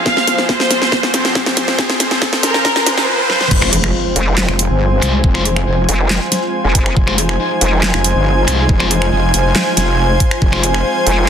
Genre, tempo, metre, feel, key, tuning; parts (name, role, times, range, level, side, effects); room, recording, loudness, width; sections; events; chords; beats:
heavy wobble dubstep; 139 BPM; 4/4; half-time; F minor; A4 = 440 Hz
supersaw pad; sustained chords; 0.0-11.3 s; F2 to C5; -22 LUFS; right 1 dB; sidechain pumping, low-pass filter
riser and impact; sound effects; 0.0-5.2 s; -21 LUFS; equal
airy breathy pad; texture; 0.0-11.3 s; F4 to Ab5; -20 LUFS; equal; chorus, sidechain pumping
warm studio violin section; melody; 0.1-3.0 s; Bb4 to F5; -18 LUFS; equal; ping-pong delay
dubstep drum kit; drums; 0.1-11.2 s; crash cymbal, finger snaps, handclaps, hi-hat, snare drum; -17 LUFS; equal
electronic kick drum; drums; 0.1-10.5 s; -15 LUFS; equal
wobble bass; bass; 3.5-10.8 s; F1 to C2; -16 LUFS; equal; chorus, overdrive
thick fuzz guitar; stabs; 3.6-10.6 s; Ab3 to C5; -21 LUFS; left 4 dB; distortion, ping-pong delay
vowel-sweep wobble bass; bass; 4.2-7.9, 11.1-11.3 s; F1; -15 LUFS; equal; chorus, overdrive
moderate plate reverb, RT60 1.1 s; dense, heavily limited modern master, high-pass filter; -12 LUFS; side -8 dB against mid
0.0-3.5 A section; 3.5-11.3 B section
build-up 0.0-3.5; drum fill 0.0-3.1, 3.3; riser 0.0-3.5; filter sweep on violin section 0.0-3.5; drop 3.5-11.3; impact 3.5-5.2
0.0 Fm
| 0.06 0.49 0.92 1.35 | 1.78 2.22 2.65 3.08 | 3.51 3.94 4.38 4.81 | 5.24 5.67 6.10 6.53 | 6.96 7.40 7.83 8.26 | 8.69 9.12 9.55 9.99 | 10.42 10.85 11.28